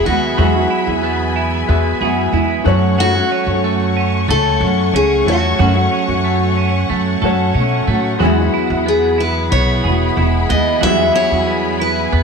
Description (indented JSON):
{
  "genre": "acoustic pop",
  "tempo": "92 BPM",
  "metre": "4/4",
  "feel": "straight",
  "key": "E major",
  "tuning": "A4 = 439 Hz",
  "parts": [
    { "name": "picked steel-string acoustic guitar", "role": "melody", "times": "0.0-12.2 s", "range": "F#4 to E5", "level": "-18 LUFS", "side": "left 2 dB", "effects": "none" },
    { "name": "clear upright piano", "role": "accompaniment", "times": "0.0-12.2 s", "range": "G3 to E5", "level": "-24 LUFS", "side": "left 12 dB", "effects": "none" },
    { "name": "nylon-string guitar", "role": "accompaniment", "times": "0.0-12.2 s", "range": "F#2 to F#4", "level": "-20 LUFS", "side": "equal", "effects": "double-tracked left and right" },
    { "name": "rich studio string section", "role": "sustained chords", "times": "0.0-12.2 s", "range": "A3 to C#6", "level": "-23 LUFS", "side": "left 4 dB", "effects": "none" },
    { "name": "twelve-string electric guitar", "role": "arpeggios", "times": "0.0-12.2 s", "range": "F#3 to A4", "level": "-20 LUFS", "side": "right 12 dB", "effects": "spring reverb" },
    { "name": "upright bass", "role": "bass", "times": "0.1-12.2 s", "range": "E1 to B2", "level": "-18 LUFS", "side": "equal", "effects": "none" }
  ],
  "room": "moderate plate reverb, RT60 3.6 s",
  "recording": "1960s-style stereo with parts hard left and right",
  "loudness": "-13 LUFS",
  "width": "side -5 dB against mid",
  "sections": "0.0-12.2 A section",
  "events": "none",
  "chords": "0.0 Eadd9; 2.7 F#m; 8.2 Eadd9"
}